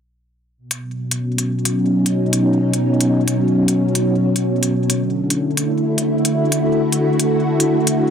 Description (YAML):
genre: IDM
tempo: 111 BPM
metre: 4/4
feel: straight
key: B major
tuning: A4 = 440 Hz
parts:
  - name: soft string machine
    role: sustained chords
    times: 0.6-8.1 s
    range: B2 to F#4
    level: -16 LUFS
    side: equal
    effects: ensemble chorus
  - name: electronic hi-hat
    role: drums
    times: 0.7-8.0 s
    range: none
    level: -21 LUFS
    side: left 2 dB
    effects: none
room: wet echo chamber reverb, RT60 1.3 s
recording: dense, heavily limited modern master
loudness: -15 LUFS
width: side -7 dB against mid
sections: 0.6-8.1 A section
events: filter sweep on string machine 0.6-8.1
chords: 0.6 B; 4.9 D